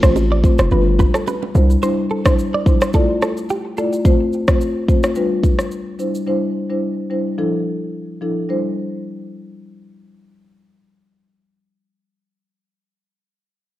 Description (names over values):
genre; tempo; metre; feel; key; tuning
afrobeats; 108 BPM; 4/4; swing 55% on 16ths; C major; A4 = 440 Hz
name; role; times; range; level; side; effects
marimba with soft mallets; accompaniment; 0.0-12.2 s; F3 to D5; -20 LUFS; left 1 dB; none
direct-recorded clean electric guitar; riff; 0.0-3.9 s; G4 to D5; -24 LUFS; right 3 dB; analog chorus, ping-pong delay
hard-hitting 808-style bass; bass; 0.0-1.8 s; F1 to C2; -15 LUFS; equal; transformer saturation
deep house drum kit; drums; 0.0-6.3 s; kick drum, rim click, shaker; -15 LUFS; equal; none
bongos and congas; percussion; 0.2-1.5 s; none; -28 LUFS; right 6 dB; none
room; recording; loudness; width
light reverb; worn, warbling old tape, cassette tape, warbly pitch drift; -15 LUFS; side -15 dB against mid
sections
0.0-8.5 A section; 8.5-10.7 B section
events
none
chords
0.0 F; 0.7 G7; 1.5 Cadd9; 2.9 Dmadd9; 4.0 F; 5.2 G7; 6.0 Cadd9; 7.4 Dmadd9; 8.5 Cadd9